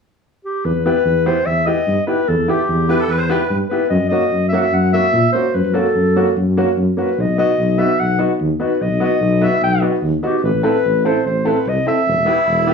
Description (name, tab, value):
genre	klezmer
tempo	147 BPM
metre	4/4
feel	straight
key	E harmonic minor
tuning	A4 = 440 Hz
part	mellow clarinet	melody	0.4-12.7 s	G4 to G5	-18 LUFS	left 2 dB	none
part	mellow tuba	bass	0.6-12.7 s	E1 to A#2	-18 LUFS	equal	none
part	warm upright piano	accompaniment	0.9-12.7 s	A#3 to A4	-19 LUFS	equal	none
part	musette accordion	second line	2.9-3.6, 12.3-12.7 s	E4 to C5	-21 LUFS	right 2 dB	none
room	light reverb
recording	worn, warbling old tape, cassette tape, warbly pitch drift, studio reverb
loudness	-14 LUFS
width	side -5 dB against mid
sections	0.7-12.7 A section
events	none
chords	0.0 N.C.; 0.7 Em; 3.9 F#; 7.2 B; 10.4 Am; 12.1 Em